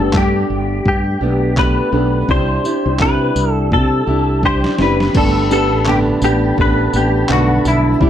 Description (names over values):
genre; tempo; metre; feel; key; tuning
acoustic pop; 84 BPM; 4/4; swing 60% on 16ths; G major; A4 = 439 Hz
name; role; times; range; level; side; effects
direct-recorded clean electric guitar; melody; 0.0-8.1 s; E4 to C5; -18 LUFS; left 3 dB; ensemble chorus
felt-muted upright piano; accompaniment; 0.0-8.1 s; A3 to D5; -24 LUFS; left 3 dB; none
fingerpicked plugged-in steel-string acoustic guitar; accompaniment; 0.0-8.1 s; G2 to G4; -18 LUFS; right 2 dB; none
mellow fretless electric bass; bass; 0.0-8.1 s; F#1 to C3; -18 LUFS; equal; none
trip hop sampler-style drum kit; drums; 0.1-8.1 s; crash cymbal, handclaps, kick drum, snare drum, tambourine; -19 LUFS; equal; none
mellow tonewheel organ; sustained chords; 5.2-8.1 s; C4 to D6; -27 LUFS; equal; chorus vibrato
room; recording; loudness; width
moderate studio reverb, RT60 0.6 s; none; -13 LUFS; side -10 dB against mid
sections
0.0-5.2 A section; 5.2-8.1 B section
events
drum fill 3.7-5.2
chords
0.0 Gadd9; 2.3 Cadd9; 5.2 Gadd9